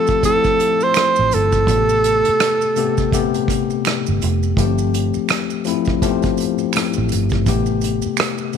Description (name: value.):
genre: R&B, neo-soul.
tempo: 83 BPM.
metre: 4/4.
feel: swing 59% on 16ths.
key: A minor.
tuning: A4 = 440 Hz.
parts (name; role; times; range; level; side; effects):
breathy tenor saxophone; melody; 0.0-3.5 s; A4 to C5; -16 LUFS; right 2 dB; none.
tine electric piano; accompaniment; 0.0-8.6 s; C3 to G4; -20 LUFS; left 11 dB; medium stereo tremolo.
unplugged drum kit; drums; 0.1-8.4 s; hi-hat, kick drum, rim click; -22 LUFS; right 3 dB; none.
maracas and finger snaps; percussion; 0.1-8.6 s; none; -29 LUFS; right 16 dB; none.
vintage muted fingered electric bass; bass; 1.2-8.1 s; F1 to A1; -20 LUFS; right 3 dB; none.
room: light reverb, studio reverb.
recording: 1960s-style stereo with parts hard left and right.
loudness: -15 LUFS.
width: side -7 dB against mid.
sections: 0.0-8.6 A section.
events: none.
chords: 0.0 G9sus4; 1.7 Am9; 4.6 G9sus4; 7.5 Am9.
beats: 0.23 0.95 | 1.68 2.40 3.12 3.84 | 4.57 5.29 6.01 6.74 | 7.46 8.18.